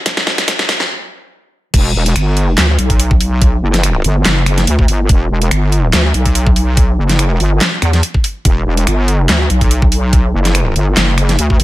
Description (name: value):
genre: heavy wobble dubstep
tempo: 143 BPM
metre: 4/4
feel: swing 54% on 16ths, half-time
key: E minor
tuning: A4 = 440 Hz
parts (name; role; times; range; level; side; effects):
- dubstep drum kit; drums; 0.1-11.6 s; crash cymbal, finger snaps, handclaps, hi-hat, snare drum; -15 LUFS; equal; none
- electronic kick drum; drums; 0.1-11.6 s; none; -12 LUFS; equal; none
- wobble bass; bass; 1.7-11.6 s; E1 to E2; -12 LUFS; equal; chorus, overdrive
room: little or no reverb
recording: high-pass filter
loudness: -10 LUFS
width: side -16 dB against mid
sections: 0.0-1.7 A section; 1.7-11.6 B section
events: build-up 0.0-1.7; drum fill 0.0-0.9; stop 0.9-1.7; drop 1.7-11.6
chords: none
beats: | 0.06 0.48 0.90 1.32 | 1.74 2.16 2.58 3.00 | 3.42 3.84 4.25 4.67 | 5.09 5.51 5.93 6.35 | 6.77 7.19 7.61 8.03 | 8.45 8.87 9.29 9.71 | 10.13 10.55 10.97 11.39